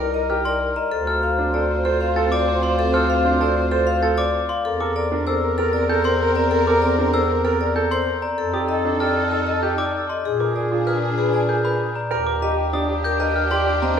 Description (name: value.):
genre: classical, minimalist pattern music.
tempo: 193 BPM.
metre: 6/4.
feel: straight.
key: unclear.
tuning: A4 = 440 Hz.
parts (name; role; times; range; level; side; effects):
vibraphone with medium hard mallets; melody; 0.0-14.0 s; Ab4 to F5; -24 LUFS; left 5 dB; none.
mellow soprano saxophone; second line; 0.0-14.0 s; G4 to C5; -26 LUFS; right 4 dB; none.
warm symphonic violin section; sustained chords; 0.0-14.0 s; C4 to Bb4; -28 LUFS; left 4 dB; none.
warm grand piano; arpeggios; 0.0-14.0 s; C4 to C5; -26 LUFS; right 6 dB; none.
warm bass clarinet; bass; 0.0-14.0 s; C2 to Bb2; -25 LUFS; equal; none.
glockenspiel with hard plastic mallets; arpeggios; 0.3-14.0 s; Bb5 to A6; -26 LUFS; left 2 dB; none.
room: wet recital hall reverb, RT60 1.6 s.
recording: heard from further back in the room.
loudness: -18 LUFS.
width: side -8 dB against mid.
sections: 0.0-12.1 A section; 12.1-14.0 B section.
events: none.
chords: 0.0 Cm9; 0.9 Dm7; 4.6 C13/E; 8.4 F9; 10.2 Bb7b9; 12.1 Ebmaj7.